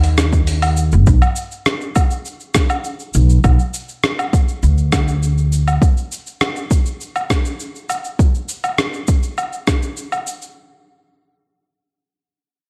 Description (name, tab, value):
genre	sunset chillout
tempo	101 BPM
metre	4/4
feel	straight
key	unclear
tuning	A4 = 439 Hz
part	upright bass	bass	0.0-5.8 s	G1 to Eb2	-16 LUFS	equal	none
part	dusty soul sampler-style drum kit	drums	0.0-10.5 s	cabasa, hi-hat, rim click, woodblock	-23 LUFS	equal	none
part	electronic kick drum	drums	0.3-9.8 s	none	-17 LUFS	equal	overdrive
room	little or no reverb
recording	none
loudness	-17 LUFS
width	mono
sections	0.0-1.1 A section; 1.1-10.6 B section; 10.6-12.7 C section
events	none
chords	none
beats	0.47 | 1.06 1.66 2.25 2.85 | 3.44 4.03 4.63 5.22 | 5.82 6.41 7.00 7.60 | 8.19 8.79 9.38 9.97